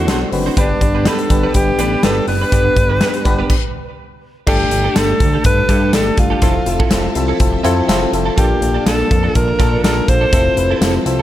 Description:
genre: 1980s-style pop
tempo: 123 BPM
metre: 4/4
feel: swing 55% on 16ths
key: unclear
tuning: A4 = 444 Hz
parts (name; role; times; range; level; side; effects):
- breathy alto saxophone; melody; 0.0-11.1 s; D4 to C5; -19 LUFS; equal; digital delay
- FM electric piano; accompaniment; 0.0-11.2 s; G2 to B4; -20 LUFS; left 3 dB; chorus
- string machine, violins; sustained chords; 0.0-11.2 s; D3 to E5; -27 LUFS; equal; none
- direct-recorded clean electric guitar; riff; 0.0-11.2 s; Bb3 to C5; -25 LUFS; right 7 dB; tube saturation, ensemble chorus, digital delay
- fat analog bass; bass; 0.0-11.2 s; F1 to Bb2; -19 LUFS; equal; none
- big rock drum kit; drums; 0.1-11.2 s; crash cymbal, hi-hat, kick drum, snare drum, tambourine; -17 LUFS; equal; gated reverb
room: light reverb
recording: none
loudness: -12 LUFS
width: side -13 dB against mid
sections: 0.0-4.5 A section; 4.5-11.2 B section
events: stop 3.5-4.5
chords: 0.0 D7; 0.6 G; 4.5 Gsus2; 6.4 Fmaj7; 8.4 Bbmaj7; 10.3 Fmaj7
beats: 0.08 | 0.57 1.06 1.55 2.04 | 2.52 3.01 3.50 3.99 | 4.47 4.96 5.45 5.94 | 6.43 6.91 7.40 7.89 | 8.38 8.87 9.35 9.84 | 10.33 10.82

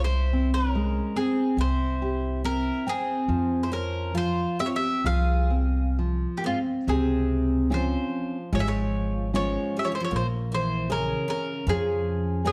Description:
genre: fado-style ballad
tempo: 62-78 BPM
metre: 4/4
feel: rubato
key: unclear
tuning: A4 = 438 Hz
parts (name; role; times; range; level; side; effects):
- mandolin; melody; 0.0-12.5 s; F4 to F5; -32 LUFS; equal; none
- picked twelve-string acoustic guitar; second line; 0.0-12.5 s; Ab2 to Ab4; -34 LUFS; equal; none
- nylon-string guitar; accompaniment; 0.0-12.5 s; C3 to G5; -32 LUFS; equal; none
- upright bass; bass; 0.0-12.5 s; Ab1 to F2; -29 LUFS; equal; none
room: light reverb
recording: dark, warm production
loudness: -26 LUFS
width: mono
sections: 0.0-6.9 A section; 6.9-12.5 B section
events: none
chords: 0.0 C7b9b13; 1.6 C; 3.3 Fm; 6.9 Dbmaj7; 10.1 Bbm7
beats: 0.74 1.58 2.44 | 3.29 4.16 5.05 5.99 | 6.89 7.72 8.53 9.33 | 10.12 10.89 11.67 12.45

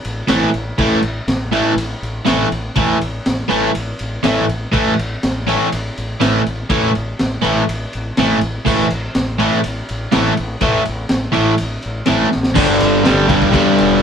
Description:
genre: garage rock duo or trio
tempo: 122 BPM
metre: 4/4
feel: straight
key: unclear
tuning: A4 = 440 Hz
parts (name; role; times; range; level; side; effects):
- crunchy breakbeat drum kit; drums; 0.0-13.9 s; crash cymbal, kick drum, ride cymbal, snare drum; -21 LUFS; equal; none
- growling fingered electric bass; bass; 0.1-14.0 s; E1 to E2; -25 LUFS; equal; overdrive
- crunchy overdriven guitar; riff; 0.3-14.0 s; G2 to A3; -14 LUFS; equal; none
room: moderate studio ambience, RT60 0.5 s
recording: band playing live in one room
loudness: -14 LUFS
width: side -7 dB against mid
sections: 0.0-12.6 A section; 12.6-14.0 B section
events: drum fill 12.3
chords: 0.0 A5; 12.6 G5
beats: 0.28 | 0.78 1.27 1.77 2.26 | 2.76 3.25 3.74 4.24 | 4.73 5.22 5.71 6.20 | 6.69 7.18 7.67 8.16 | 8.65 9.14 9.63 10.12 | 10.60 11.09 11.58 12.07 | 12.56 13.04 13.53 14.02

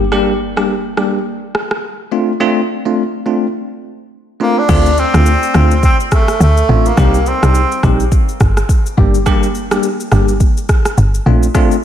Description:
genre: afrobeats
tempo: 105 BPM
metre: 4/4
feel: swing 58% on 16ths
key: unclear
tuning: A4 = 441 Hz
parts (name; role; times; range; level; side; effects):
- bell-like tine electric piano; accompaniment; 0.0-11.7 s; G3 to G4; -16 LUFS; left 1 dB; medium stereo tremolo
- woody log drum bass; bass; 0.0-11.5 s; G1 to D2; -12 LUFS; equal; none
- afro-pop drum kit; drums; 0.1-11.8 s; crash cymbal, kick drum, rim click, shaker; -15 LUFS; equal; none
- breathy tenor saxophone; melody; 4.4-7.8 s; A3 to D4; -16 LUFS; equal; analog delay
room: moderate plate reverb, RT60 1.6 s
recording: dreamy mix soaked in reverb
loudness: -11 LUFS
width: side -10 dB against mid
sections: 0.0-4.7 A section; 4.7-11.8 B section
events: none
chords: 0.0 Gm; 2.1 Dm7; 7.0 Cm; 9.0 Gm; 11.3 Bbmaj7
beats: | 0.12 0.69 1.26 1.83 | 2.40 2.98 3.55 4.12 | 4.69 5.26 5.83 6.40 | 6.97 7.55 8.12 8.69 | 9.26 9.83 10.40 10.97 | 11.55

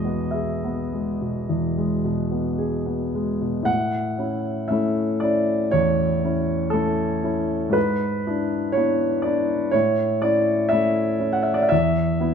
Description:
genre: classical, romantic nocturne for solo piano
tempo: 50-62 BPM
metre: 4/4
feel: rubato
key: E major, A major from 3.7 s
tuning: A4 = 439 Hz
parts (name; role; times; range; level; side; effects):
- warm concert grand piano; solo; 0.0-12.3 s; E2 to F#5; -20 LUFS; equal; none
room: moderate large studio reverb, RT60 1.3 s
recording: none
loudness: -20 LUFS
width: side -7 dB against mid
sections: 0.0-3.7 A section; 3.7-12.3 B section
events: none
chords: 0.0 E; 3.7 A; 7.8 E7/G#; 9.7 A; 11.7 E5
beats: 0.33 1.50 2.59 | 3.67 4.70 5.73 6.73 | 7.75 8.75 9.73 10.72 | 11.71

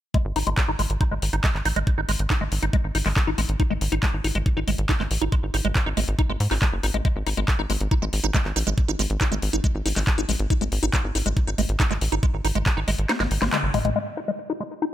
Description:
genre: psychedelic trance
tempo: 139 BPM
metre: 4/4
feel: straight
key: unclear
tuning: A4 = 441 Hz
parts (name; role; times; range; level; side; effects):
- liquid acid bass; riff; 0.1-14.8 s; G#3 to D#4; -27 LUFS; moving between left 5 dB and right 6 dB; phaser, auto-pan, sidechain pumping, tape echo
- drum and bass drum kit; drums; 0.1-13.9 s; handclaps, hi-hat, snare drum, toms; -28 LUFS; equal; overdrive, low-pass filter on hats, low-pass filter on snare, low-pass filter on toms
- electronic kick drum; drums; 0.1-12.7 s; none; -22 LUFS; equal; none
- tight sequencer bass; bass; 0.3-13.9 s; F#1 to G#2; -25 LUFS; equal; none
room: little or no reverb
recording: none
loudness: -21 LUFS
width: side -12 dB against mid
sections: 0.1-14.0 A section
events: kick drops out 13.1-14.0; drum fill 13.1-14.0; band accent 13.5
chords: 0.1 G#5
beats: | 0.14 0.57 1.01 1.44 | 1.87 2.30 2.73 3.17 | 3.60 4.03 4.46 4.89 | 5.32 5.75 6.19 6.62 | 7.05 7.48 7.91 8.35 | 8.78 9.21 9.64 10.07 | 10.50 10.94 11.37 11.80 | 12.23 12.66 13.09 13.53 | 13.96 14.39 14.82

